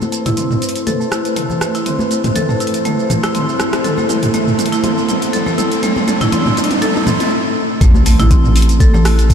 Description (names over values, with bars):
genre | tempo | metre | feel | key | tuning
afro house | 121 BPM | 4/4 | swing 55% on 16ths | A minor | A4 = 442 Hz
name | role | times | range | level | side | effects
warm analog pad | sustained chords | 0.0-9.3 s | A3 to C5 | -23 LUFS | left 1 dB | chorus, sidechain pumping
deep house drum kit | drums | 0.0-9.3 s | hi-hat, rim click, shaker, toms | -19 LUFS | right 1 dB | none
congas | percussion | 0.0-9.0 s | none | -23 LUFS | left 2 dB | none
riser and impact | sound effects | 2.1-9.3 s | none | -21 LUFS | equal | none
marimba with hard mallets | arpeggios | 0.1-9.3 s | A3 to A4 | -18 LUFS | equal | sidechain pumping, low-pass filter, ping-pong delay
round analog bass | bass | 7.8-9.3 s | A1 | -12 LUFS | equal | sidechain pumping
electronic kick drum | drums | 7.8-9.3 s | none | -10 LUFS | equal | none
room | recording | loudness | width
moderate huge ambient reverb, RT60 7.5 s | dreamy mix soaked in reverb | -12 LUFS | side -8 dB against mid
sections
0.0-7.8 A section; 7.8-9.3 B section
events
build-up 0.0-7.8; drum fill 0.0-7.3; filter sweep on marimba 0.0-7.8; riser 2.1-7.3; stop 7.3-7.8; drop 7.8-9.3; impact 7.8-9.3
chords
0.0 Am; 7.8 Am7